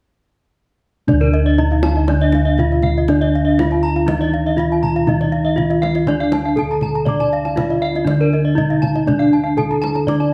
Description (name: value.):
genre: Balinese gamelan.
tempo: 120 BPM.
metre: 4/4.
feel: straight.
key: D pelog.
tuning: A4 = 440 Hz.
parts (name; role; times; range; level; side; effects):
gamelan-type bronze metallophone; melody; 1.1-10.3 s; D4 to D5; -21 LUFS; equal; none.
gamelan-type bronze metallophone; accompaniment; 1.1-10.3 s; D3 to D4; -24 LUFS; equal; none.
gamelan-type bronze metallophone; arpeggios; 1.1-10.2 s; D5 to D6; -27 LUFS; equal; none.
gamelan-type bossed gongs; bass; 1.1-10.3 s; D2 to D5; -22 LUFS; equal; none.
kendang; percussion; 1.1-10.3 s; none; -26 LUFS; equal; none.
gamelan-type bronze metallophone; arpeggios; 1.2-10.3 s; Bb4-20c to Bb5-20c; -28 LUFS; equal; none.
room: moderate recital hall reverb, RT60 1.4 s.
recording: dark, warm production.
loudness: -16 LUFS.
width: mono.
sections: 1.1-10.3 A section.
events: none.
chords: none.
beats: | 1.08 1.58 2.08 2.58 | 3.08 3.58 4.08 4.58 | 5.08 5.58 6.08 6.58 | 7.08 7.58 8.08 8.58 | 9.08 9.58 10.08.